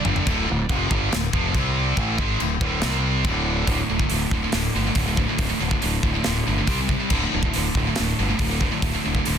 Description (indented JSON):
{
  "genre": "heavy metal",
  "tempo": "140 BPM",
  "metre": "4/4",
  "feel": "straight",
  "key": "D minor",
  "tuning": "A4 = 441 Hz",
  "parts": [
    { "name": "distorted electric guitar", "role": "riff", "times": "0.0-9.4 s", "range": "D2 to G4", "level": "-28 LUFS", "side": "right 1 dB", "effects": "distortion" },
    { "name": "heavy high-gain guitar", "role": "riff", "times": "0.0-9.4 s", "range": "D2 to C4", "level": "-27 LUFS", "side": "right 15 dB", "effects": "distortion" },
    { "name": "scooped high-gain guitar", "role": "riff", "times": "0.0-9.4 s", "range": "D2 to C4", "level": "-28 LUFS", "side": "left 12 dB", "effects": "distortion" },
    { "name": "growling fingered electric bass", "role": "bass", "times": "0.1-9.4 s", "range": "D1 to C2", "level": "-26 LUFS", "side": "equal", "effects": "overdrive" },
    { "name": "modern studio drum kit", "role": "drums", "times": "0.1-9.4 s", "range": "china cymbal, crash cymbal, hi-hat, kick drum, snare drum, toms", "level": "-25 LUFS", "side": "equal", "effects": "none" }
  ],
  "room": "little or no reverb",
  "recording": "dense, heavily limited modern master",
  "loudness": "-20 LUFS",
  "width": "side -8 dB against mid",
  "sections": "0.3-3.7 A section; 3.7-9.4 B section",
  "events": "drum fill 0.0",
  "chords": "0.3 Dm; 1.5 C5; 2.0 D5; 2.8 C5; 3.3 D5; 6.7 C5; 7.1 D5"
}